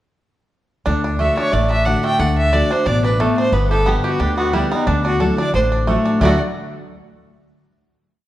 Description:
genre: bluegrass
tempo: 179 BPM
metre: 4/4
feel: swing 54% on 8ths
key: D major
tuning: A4 = 440 Hz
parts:
  - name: picked steel-string acoustic guitar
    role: accompaniment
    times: 0.9-6.4 s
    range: G2 to G4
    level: -21 LUFS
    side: left 2 dB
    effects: none
  - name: bluegrass banjo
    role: arpeggios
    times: 0.9-6.4 s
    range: G3 to A4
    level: -22 LUFS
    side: right 2 dB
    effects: none
  - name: upright bass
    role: bass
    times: 0.9-6.4 s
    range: G1 to D2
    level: -20 LUFS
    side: equal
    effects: none
  - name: dark fiddle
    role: melody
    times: 1.2-6.4 s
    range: D4 to G5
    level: -20 LUFS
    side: right 1 dB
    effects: none
room: moderate recital hall reverb, RT60 1.7 s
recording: dark, warm production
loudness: -15 LUFS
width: side -14 dB against mid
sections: 0.9-6.2 A section; 6.2-7.6 final chord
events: none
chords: 0.9 D; 3.5 G; 4.9 Dadd9; 6.2 D

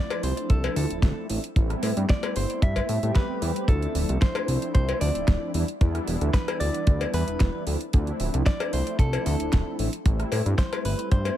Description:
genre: nu-disco, nu disco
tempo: 113 BPM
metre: 4/4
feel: straight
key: D dorian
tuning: A4 = 440 Hz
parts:
  - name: direct-recorded clean electric guitar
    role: melody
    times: 0.0-11.4 s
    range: A4 to E5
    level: -32 LUFS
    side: equal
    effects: ping-pong delay
  - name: mellow synth brass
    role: accompaniment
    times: 0.0-11.4 s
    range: E3 to G4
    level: -31 LUFS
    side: equal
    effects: chorus, sidechain pumping, tape echo
  - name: pop drum kit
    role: drums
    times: 0.1-11.4 s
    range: hi-hat, rim click, snare drum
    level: -34 LUFS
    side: equal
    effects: overdrive
  - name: cowbell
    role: percussion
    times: 0.1-11.4 s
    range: none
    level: -32 LUFS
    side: left 8 dB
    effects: none
  - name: fat analog bass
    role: bass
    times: 0.2-11.3 s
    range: D1 to A2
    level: -26 LUFS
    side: equal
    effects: none
  - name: kick drum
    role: drums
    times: 0.5-11.2 s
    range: none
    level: -20 LUFS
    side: equal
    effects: none
room: small room ambience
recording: none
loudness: -22 LUFS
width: side -12 dB against mid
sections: 0.0-11.4 A section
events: none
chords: 0.0 Dm7; 1.6 Am7; 3.7 Dm7; 5.5 Em7; 7.7 Dm7; 10.1 Am7

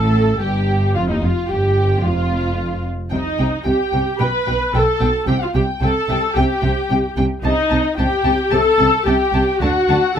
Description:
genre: quick classical-period movement for string orchestra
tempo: 111 BPM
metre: 4/4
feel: rubato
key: unclear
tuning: A4 = 440 Hz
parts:
  - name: muted studio violin section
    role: melody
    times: 0.0-10.2 s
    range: Eb4 to A5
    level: -27 LUFS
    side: left 2 dB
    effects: none
  - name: muted studio violin section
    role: second line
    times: 0.0-10.2 s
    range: Eb5 to B5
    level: -25 LUFS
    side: left 3 dB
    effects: none
  - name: muted studio viola section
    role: accompaniment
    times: 0.0-10.2 s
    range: Eb4 to B4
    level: -19 LUFS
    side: left 1 dB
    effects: none
  - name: muted studio cello section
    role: bass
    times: 0.0-10.2 s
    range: Eb2 to D3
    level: -21 LUFS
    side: right 1 dB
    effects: none
  - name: muted studio double bass section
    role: bass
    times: 0.0-10.2 s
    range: F1 to D2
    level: -22 LUFS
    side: right 1 dB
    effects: none
room: light reverb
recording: close, detailed microphones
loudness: -15 LUFS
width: side -8 dB against mid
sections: 0.0-10.2 A section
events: none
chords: 0.0 Gsus2; 0.9 Ebadd9/F (rootless); 3.1 Cm; 4.2 G/B; 5.3 C5; 7.4 Am7b5/C; 9.6 D

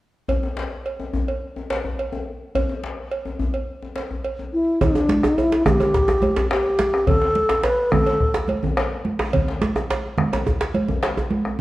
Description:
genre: west african traditional, West African drum ensemble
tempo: 106 BPM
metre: 4/4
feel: straight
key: G major pentatonic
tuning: A4 = 440 Hz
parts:
  - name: cowbell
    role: percussion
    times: 0.3-11.2 s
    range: none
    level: -29 LUFS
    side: right 3 dB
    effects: none
  - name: djembe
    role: percussion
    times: 0.3-11.6 s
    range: none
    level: -27 LUFS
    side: left 2 dB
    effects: none
  - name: reedy wooden-headed alto flute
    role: melody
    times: 4.5-8.5 s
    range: D4 to B4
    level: -19 LUFS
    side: left 1 dB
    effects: none
  - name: bombo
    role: percussion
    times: 4.8-11.6 s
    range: none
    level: -26 LUFS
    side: left 1 dB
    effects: none
  - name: congas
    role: percussion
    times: 4.8-11.6 s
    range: none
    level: -25 LUFS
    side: right 3 dB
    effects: none
  - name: djembe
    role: percussion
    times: 4.8-11.3 s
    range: none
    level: -24 LUFS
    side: right 2 dB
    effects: none
room: moderate recital hall reverb, RT60 1.5 s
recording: worn, warbling old tape, cassette tape, warbly pitch drift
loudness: -19 LUFS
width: side -16 dB against mid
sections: 0.3-4.8 A section; 4.8-11.6 B section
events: none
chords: none

